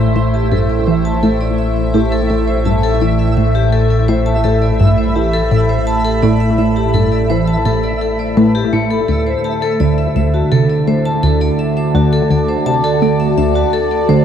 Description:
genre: ambient, sequencer-driven space music.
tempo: 84 BPM.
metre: 4/4.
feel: straight.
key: A dorian.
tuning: A4 = 444 Hz.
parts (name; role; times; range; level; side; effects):
evolving wavetable pad; sustained chords; 0.0-14.2 s; A2 to B5; -17 LUFS; right 2 dB; chorus, built-in reverb, phaser.
vibraphone with hard mallets; arpeggios; 0.0-14.2 s; A3 to A5; -19 LUFS; left 3 dB; auto-pan, ping-pong delay.
tight sequenced synth; riff; 0.0-14.2 s; D2 to A3; -16 LUFS; equal; chorus, phaser, ping-pong delay.
warm sub bass; bass; 0.0-14.2 s; A1 to D2; -21 LUFS; equal; none.
twinkling granular texture; texture; 0.0-9.1 s; E5; -28 LUFS; right 3 dB; built-in reverb.
room: moderate huge ambient reverb, RT60 8.5 s.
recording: dark, warm production.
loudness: -12 LUFS.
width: side -9 dB against mid.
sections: 0.0-9.1 A section; 9.1-14.2 B section.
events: filter sweep on synth arpeggio sound 0.0-9.1.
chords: 0.0 Am; 9.1 D.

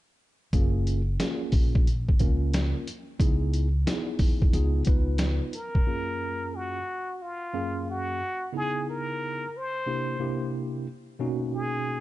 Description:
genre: hip hop, jazz-hop.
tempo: 90 BPM.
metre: 4/4.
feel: swing 66% on 16ths.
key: F# major.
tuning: A4 = 441 Hz.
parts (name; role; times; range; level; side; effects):
tine electric piano; accompaniment; 0.5-12.0 s; F#2 to E#5; -32 LUFS; right 1 dB; medium stereo tremolo.
upright bass; bass; 0.5-5.4 s; F#1 to E2; -26 LUFS; equal; none.
trip hop sampler-style drum kit; drums; 0.5-5.9 s; hi-hat, kick drum, snare drum; -24 LUFS; equal; none.
trumpet with plunger mute; melody; 5.6-12.0 s; E#4 to B#4; -31 LUFS; equal; none.
room: little or no reverb.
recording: dark, warm production, nothing above 11.0 kHz.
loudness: -25 LUFS.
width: side -16 dB against mid.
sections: 0.5-5.9 A section; 5.9-12.0 B section.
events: none.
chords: 0.5 F#maj7; 3.2 C#m7; 4.5 C#7; 5.9 F#maj7; 8.5 C#m7; 9.9 C9; 11.2 Bmaj7.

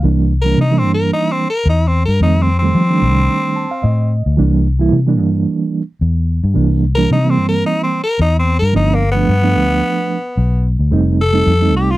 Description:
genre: straight-eighth soul blues.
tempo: 110 BPM.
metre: 4/4.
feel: swing 55% on 16ths.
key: C mixolydian.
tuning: A4 = 440 Hz.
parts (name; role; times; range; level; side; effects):
reed electric piano; accompaniment; 0.0-12.0 s; Eb3 to A5; -17 LUFS; right 4 dB; fast tremolo.
vintage muted fingered electric bass; bass; 0.0-12.0 s; F1 to F3; -14 LUFS; left 1 dB; none.
raspy tenor saxophone; melody; 0.4-12.0 s; Bb3 to Bb4; -18 LUFS; left 1 dB; none.
room: little or no reverb.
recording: dry, close 1970s-style studio recording.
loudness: -12 LUFS.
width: side -17 dB against mid.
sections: 0.0-12.0 A section.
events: reed electric piano fill 3.3-4.4.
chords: 0.0 C9; 2.2 F9; 4.4 C9; 8.7 G9; 10.9 F9.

